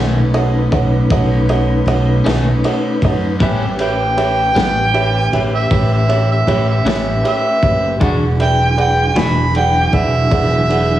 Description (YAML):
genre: slow blues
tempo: 52 BPM (dotted quarters)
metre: 12/8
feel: straight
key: unclear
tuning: A4 = 440 Hz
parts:
  - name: clean electric guitar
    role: accompaniment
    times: 0.0-9.4 s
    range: A2 to F#4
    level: -20 LUFS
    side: left 3 dB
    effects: harmonic tremolo
  - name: clear upright piano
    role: accompaniment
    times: 0.0-11.0 s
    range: F#4 to G#5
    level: -20 LUFS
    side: right 3 dB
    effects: none
  - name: mellow tonewheel organ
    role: sustained chords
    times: 0.0-11.0 s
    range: F#3 to B4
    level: -21 LUFS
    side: left 2 dB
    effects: slow rotary speaker
  - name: upright bass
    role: bass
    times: 0.0-11.0 s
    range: E1 to F#2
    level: -17 LUFS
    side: equal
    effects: none
  - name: crunchy breakbeat drum kit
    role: drums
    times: 0.3-10.9 s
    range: kick drum, ride cymbal, snare drum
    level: -22 LUFS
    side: equal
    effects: none
  - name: mellow harmonica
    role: second line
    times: 3.8-11.0 s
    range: E5 to B5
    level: -17 LUFS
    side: right 2 dB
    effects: overdrive, slapback echo
room: small room reverb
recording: heavily compressed radio sound, multiband compression, studio reverb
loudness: -12 LUFS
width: side -13 dB against mid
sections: 0.0-11.0 A section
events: harmonica solo 0.0-11.0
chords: 0.0 B9; 3.4 A9; 8.0 E9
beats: 1.10 2.26 | 3.41 4.56 5.71 6.86 | 8.01 9.16 10.31